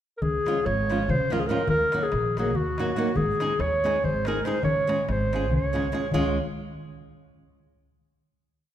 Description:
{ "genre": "balkan folk, Balkan wedding band", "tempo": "283 BPM (eighths)", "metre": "7/8", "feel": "straight", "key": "Db major", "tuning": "A4 = 440 Hz", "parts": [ { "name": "mellow clarinet", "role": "melody", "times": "0.2-6.4 s", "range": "Gb4 to Db5", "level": "-26 LUFS", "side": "equal", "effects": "none" }, { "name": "upright bass", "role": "bass", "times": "0.2-6.4 s", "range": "Ab1 to Eb2", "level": "-30 LUFS", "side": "equal", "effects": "none" }, { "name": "darbuka", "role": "percussion", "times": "0.2-6.4 s", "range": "none", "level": "-31 LUFS", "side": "left 2 dB", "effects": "none" }, { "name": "flamenco guitar", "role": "accompaniment", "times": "0.5-6.4 s", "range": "F3 to Ab4", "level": "-29 LUFS", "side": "right 1 dB", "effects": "none" } ], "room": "moderate concert hall reverb, RT60 2.1 s", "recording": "minimal, uncompressed stereo recording", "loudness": "-22 LUFS", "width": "side -11 dB against mid", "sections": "0.0-0.2 pickup bar; 0.2-6.1 A section; 6.1-7.6 final chord", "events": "none", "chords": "0.2 Db; 1.7 Ebm; 3.1 Ab; 4.6 Db", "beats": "0.01 | 0.22 0.42 0.63 0.84 1.05 1.26 1.47 | 1.68 1.88 2.09 2.30 2.51 2.72 2.94 | 3.15 3.36 3.57 3.78 3.99 4.21 4.42 | 4.63 4.84 5.06 5.27 5.48 5.70 5.91 | 6.12 6.34" }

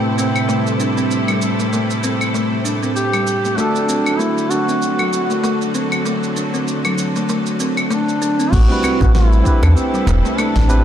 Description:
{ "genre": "organic downtempo", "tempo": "97 BPM", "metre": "4/4", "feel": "swing 57% on 16ths", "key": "A dorian", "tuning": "A4 = 439 Hz", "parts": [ { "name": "warm duduk", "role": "melody", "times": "0.0-10.8 s", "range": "C4 to G4", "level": "-22 LUFS", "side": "right 1 dB", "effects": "digital delay" }, { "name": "barky tine electric piano", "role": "accompaniment", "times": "0.0-10.8 s", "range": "A2 to B4", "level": "-24 LUFS", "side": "right 2 dB", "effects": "auto-pan, sidechain pumping, tape echo" }, { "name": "bright symphonic string section", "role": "sustained chords", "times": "0.0-10.8 s", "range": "C3 to F#5", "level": "-24 LUFS", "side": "equal", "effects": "sidechain pumping" }, { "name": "buzzing kalimba", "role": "arpeggios", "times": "0.0-10.8 s", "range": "F#3 to D4", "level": "-21 LUFS", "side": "left 1 dB", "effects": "tape echo" }, { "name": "wind-like tuned noise texture", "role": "texture", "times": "0.0-8.5 s", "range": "C4 to C5", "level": "-31 LUFS", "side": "right 2 dB", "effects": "built-in reverb" }, { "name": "deep house drum kit", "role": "drums", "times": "0.2-10.8 s", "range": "claves, crash cymbal, shaker, snare drum", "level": "-26 LUFS", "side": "equal", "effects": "none" }, { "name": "woody FM bass", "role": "bass", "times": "8.5-10.8 s", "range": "E1 to E2", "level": "-12 LUFS", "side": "equal", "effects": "sidechain pumping" }, { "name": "electronic kick drum", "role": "drums", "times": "8.5-10.7 s", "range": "none", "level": "-18 LUFS", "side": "equal", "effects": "none" }, { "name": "djembe", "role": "percussion", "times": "8.8-10.7 s", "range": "none", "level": "-25 LUFS", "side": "right 1 dB", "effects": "none" } ], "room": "moderate concert hall reverb, RT60 2.1 s", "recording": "dark, warm production", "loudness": "-14 LUFS", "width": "side -10 dB against mid", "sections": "0.0-8.5 A section; 8.5-10.8 B section", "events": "none", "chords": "0.0 Am7; 3.6 D; 8.5 Am7", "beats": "0.49 | 1.10 1.72 2.34 2.96 | 3.58 4.20 4.82 5.43 | 6.05 6.67 7.29 7.91 | 8.53 9.15 9.77 10.38" }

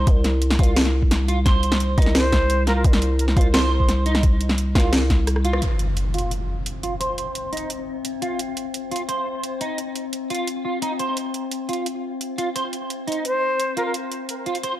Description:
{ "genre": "half-time drum and bass", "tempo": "173 BPM", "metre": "4/4", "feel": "half-time", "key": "unclear", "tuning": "A4 = 443 Hz", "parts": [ { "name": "electric guitar at the edge of break-up", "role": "arpeggios", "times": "0.0-14.7 s", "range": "Eb4 to C5", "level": "-28 LUFS", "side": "right 2 dB", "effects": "ensemble chorus, low-pass filter, analog delay" }, { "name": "growling 808-style bass", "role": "bass", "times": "0.0-5.6 s", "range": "C2", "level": "-20 LUFS", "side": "equal", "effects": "none" }, { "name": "drum and bass drum kit", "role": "drums", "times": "0.1-14.7 s", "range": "hi-hat, rim click, snare drum", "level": "-24 LUFS", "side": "equal", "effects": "overdrive" }, { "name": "electronic kick drum", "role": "drums", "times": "0.1-5.2 s", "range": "none", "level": "-18 LUFS", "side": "equal", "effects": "none" }, { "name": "bright concert flute", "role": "melody", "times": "2.2-2.8, 13.3-13.9 s", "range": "Bb4 to C5", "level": "-24 LUFS", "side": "equal", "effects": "analog delay" }, { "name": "impact", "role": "sound effects", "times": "5.6-7.0 s", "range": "none", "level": "-27 LUFS", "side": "equal", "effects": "none" }, { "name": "metallic inharmonic drone", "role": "texture", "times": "6.5-14.8 s", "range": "C4", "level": "-30 LUFS", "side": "left 5 dB", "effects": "chorus, built-in reverb, phaser" } ], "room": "light reverb, digital ambience", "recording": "dry, gritty hardware recording", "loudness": "-19 LUFS", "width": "side -14 dB against mid", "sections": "0.0-5.6 A section; 5.6-14.8 B section", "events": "drop 0.0-5.6; drum fill 5.3-5.6; band accent 5.5; impact 5.6-7.0; filter sweep on clean electric guitar 5.6-14.8", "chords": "0.1 F5", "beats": "| 0.07 0.42 0.76 1.11 | 1.46 1.80 2.15 2.50 | 2.84 3.19 3.54 3.88 | 4.23 4.58 4.92 5.27 | 5.62 5.97 6.31 6.66 | 7.01 7.35 7.70 8.05 | 8.39 8.74 9.09 9.43 | 9.78 10.13 10.47 10.82 | 11.17 11.52 11.86 12.21 | 12.55 12.90 13.25 13.60 | 13.94 14.29 14.64" }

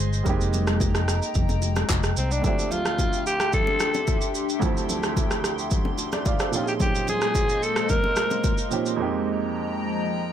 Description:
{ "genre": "amapiano", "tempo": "110 BPM", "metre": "4/4", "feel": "straight", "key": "D minor", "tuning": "A4 = 440 Hz", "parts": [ { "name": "warm grand piano", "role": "accompaniment", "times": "0.0-10.3 s", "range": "D2 to F5", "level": "-30 LUFS", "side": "right 6 dB", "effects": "none" }, { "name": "hollow soft pad", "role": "sustained chords", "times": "0.0-10.3 s", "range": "F3 to C6", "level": "-30 LUFS", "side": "left 3 dB", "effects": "chorus" }, { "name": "fingered electric bass", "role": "bass", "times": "0.0-2.4 s", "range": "F1 to C2", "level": "-24 LUFS", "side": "equal", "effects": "none" }, { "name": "deep house drum kit", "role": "drums", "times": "0.1-9.0 s", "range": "handclaps, kick drum, rim click, shaker", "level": "-25 LUFS", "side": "equal", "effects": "none" }, { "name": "congas and bongos", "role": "percussion", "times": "0.3-8.6 s", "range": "none", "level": "-34 LUFS", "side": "left 3 dB", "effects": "none" }, { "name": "growling alto saxophone", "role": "melody", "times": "2.2-8.7 s", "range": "C4 to Bb4", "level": "-26 LUFS", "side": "equal", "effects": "digital delay" } ], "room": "little or no reverb", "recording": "none", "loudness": "-21 LUFS", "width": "side -10 dB against mid", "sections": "0.0-10.3 A section", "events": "break 9.0-10.3", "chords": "0.3 Fm11; 2.4 Dm11; 6.5 Bbm11; 9.0 Fm11", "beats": "| 0.26 0.81 1.35 1.90 | 2.44 2.99 3.53 4.08 | 4.62 5.17 5.71 6.26 | 6.80 7.35 7.90 8.44 | 8.99 9.53 10.08" }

